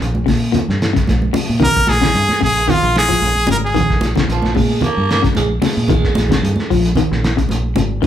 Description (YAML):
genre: afrobeat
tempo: 112 BPM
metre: 4/4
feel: swing 53% on 16ths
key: Bb dorian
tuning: A4 = 440 Hz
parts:
  - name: electric guitar at the edge of break-up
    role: arpeggios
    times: 0.0-8.1 s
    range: Bb2 to F3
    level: -20 LUFS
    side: left 5 dB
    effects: none
  - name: fingered electric bass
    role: bass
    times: 0.0-8.1 s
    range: Ab1 to Bb2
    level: -19 LUFS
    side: equal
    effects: none
  - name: cloth-damped thuddy drum kit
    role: drums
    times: 0.0-8.1 s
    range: hi-hat, kick drum, snare drum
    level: -20 LUFS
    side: equal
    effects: none
  - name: congas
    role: percussion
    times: 0.0-8.1 s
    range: none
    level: -21 LUFS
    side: right 2 dB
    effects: none
  - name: brilliant trumpet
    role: melody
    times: 1.6-4.1 s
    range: F4 to Bb4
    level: -15 LUFS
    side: equal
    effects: none
  - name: raspy baritone saxophone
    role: second line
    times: 4.3-6.7 s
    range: F3 to Bb3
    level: -21 LUFS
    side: right 4 dB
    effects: none
room: moderate large studio reverb, RT60 0.9 s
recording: band playing live in one room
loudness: -13 LUFS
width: side -10 dB against mid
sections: 0.0-8.1 A section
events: none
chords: 0.0 Bbm7